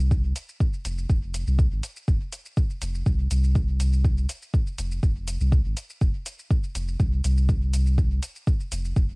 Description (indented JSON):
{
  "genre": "dub techno",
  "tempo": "122 BPM",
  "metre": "4/4",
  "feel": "straight",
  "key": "F minor",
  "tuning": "A4 = 440 Hz",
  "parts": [
    { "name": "warm sub bass", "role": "bass", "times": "0.0-9.2 s", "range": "F1 to C2", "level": "-23 LUFS", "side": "equal", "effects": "transformer saturation, sidechain pumping" },
    { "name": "electronic shaker and hi-hat", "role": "drums", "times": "0.0-9.1 s", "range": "none", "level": "-38 LUFS", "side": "equal", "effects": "none" },
    { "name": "electronic kick drum", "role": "drums", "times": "0.1-9.1 s", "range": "none", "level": "-22 LUFS", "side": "equal", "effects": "none" }
  ],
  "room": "digital ambience",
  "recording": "home recording on cassette",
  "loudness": "-22 LUFS",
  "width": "side -39 dB against mid",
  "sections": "0.0-9.2 A section",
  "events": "none",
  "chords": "none"
}